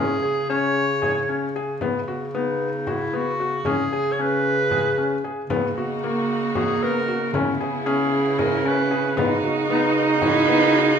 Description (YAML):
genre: contemporary instrumental, chamber music in an uneven meter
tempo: 228 BPM (eighths)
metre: 7/8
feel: straight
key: C# dorian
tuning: A4 = 441 Hz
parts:
  - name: bright clarinet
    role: melody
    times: 0.0-11.0 s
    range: D#4 to C#5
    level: -25 LUFS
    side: right 1 dB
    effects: none
  - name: felt-muted upright piano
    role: arpeggios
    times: 0.0-10.9 s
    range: A#3 to G#4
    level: -26 LUFS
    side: left 4 dB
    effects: none
  - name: mellow bass clarinet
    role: bass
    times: 0.0-11.0 s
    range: C#3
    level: -26 LUFS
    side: equal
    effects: none
  - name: frame drum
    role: percussion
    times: 1.0-10.5 s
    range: none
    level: -31 LUFS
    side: left 2 dB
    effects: none
  - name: dark cello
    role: second line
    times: 5.5-11.0 s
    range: A#3 to D#4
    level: -23 LUFS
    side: right 5 dB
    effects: none
  - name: muted studio string section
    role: sustained chords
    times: 5.5-11.0 s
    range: C#3 to D#5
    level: -30 LUFS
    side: equal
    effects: none
room: wet recital hall reverb, RT60 1.3 s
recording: minimal, uncompressed stereo recording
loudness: -19 LUFS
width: side -7 dB against mid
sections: 0.0-11.0 A section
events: none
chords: 0.0 C#5; 1.8 B/C#; 3.7 C#5; 5.5 Bmaj7/C#; 7.3 C#m7; 9.2 Bmaj7/C#